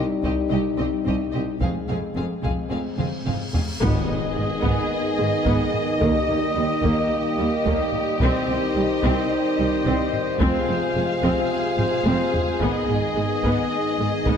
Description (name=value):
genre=cinematic, epic orchestral film score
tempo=109 BPM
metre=4/4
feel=straight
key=unclear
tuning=A4 = 440 Hz
part: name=warm symphonic violin section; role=melody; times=0.0-14.4 s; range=Eb5 to F5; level=-31 LUFS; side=left 2 dB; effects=none
part: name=rich symphonic violin section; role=second line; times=0.0-14.4 s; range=G4 to Ab4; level=-31 LUFS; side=left 3 dB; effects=none
part: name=warm symphonic viola section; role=accompaniment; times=0.0-14.4 s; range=G3 to C4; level=-29 LUFS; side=equal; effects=none
part: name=mellow French horn section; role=sustained chords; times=0.0-14.4 s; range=G3 to F4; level=-28 LUFS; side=left 4 dB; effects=none
part: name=rich chamber cello section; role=bass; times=0.0-14.3 s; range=C2 to G#2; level=-29 LUFS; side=right 3 dB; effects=none
part: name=warm symphonic double bass section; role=bass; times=0.0-14.3 s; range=F1 to D#2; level=-29 LUFS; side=right 3 dB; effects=none
part: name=taiko ensemble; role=drums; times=0.2-14.4 s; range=none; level=-27 LUFS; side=left 1 dB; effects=none
part: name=cymbal swell and impact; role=sound effects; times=2.8-6.0 s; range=none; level=-36 LUFS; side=left 1 dB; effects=none
part: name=clear trombone section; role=sustained chords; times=3.8-14.4 s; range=C3 to G#3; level=-29 LUFS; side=right 3 dB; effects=none
part: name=warm trumpet section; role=stabs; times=3.8-14.4 s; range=G#4 to D#5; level=-27 LUFS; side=equal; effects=none
part: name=timpani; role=percussion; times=3.8-6.8 s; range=G#2 to D#3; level=-31 LUFS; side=left 2 dB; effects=none
room=wet scoring stage reverb, RT60 2.0 s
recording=none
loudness=-20 LUFS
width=side -7 dB against mid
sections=0.0-3.8 A section; 3.8-14.4 B section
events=cymbal swell 2.8-3.8; drum fill 3.0-3.8, 11.8-12.6; impact 3.8-6.0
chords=0.0 Cm; 1.6 Fm; 3.8 G#m; 6.0 D#; 8.2 Cm; 10.4 Fm; 12.6 G#m